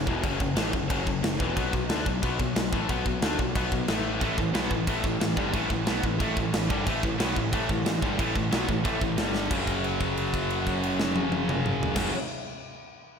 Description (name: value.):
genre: heavy metal.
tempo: 181 BPM.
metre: 4/4.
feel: straight.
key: F# phrygian.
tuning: A4 = 440 Hz.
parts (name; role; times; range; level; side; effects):
heavy high-gain guitar; riff; 0.0-12.1 s; E2 to D4; -30 LUFS; left 9 dB; distortion.
heavy high-gain guitar; riff; 0.0-12.1 s; E2 to D4; -33 LUFS; right 1 dB; distortion, slapback echo.
growling picked electric bass; bass; 0.0-12.1 s; E1 to D2; -33 LUFS; right 1 dB; overdrive.
tight metal drum kit; drums; 0.1-12.0 s; crash cymbal, kick drum, snare drum, toms; -29 LUFS; right 1 dB; none.
scooped high-gain guitar; riff; 4.2-12.1 s; F#2 to B3; -32 LUFS; right 9 dB; distortion.
room: moderate lush hall reverb, RT60 1.8 s.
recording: big arena sound.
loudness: -24 LUFS.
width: side -6 dB against mid.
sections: 0.0-9.5 A section; 9.5-12.2 B section.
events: drum fill 9.3; held note 9.5-12.0.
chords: 0.0 F#m; 1.6 B5; 3.9 A5; 9.2 G5; 9.5 F#5.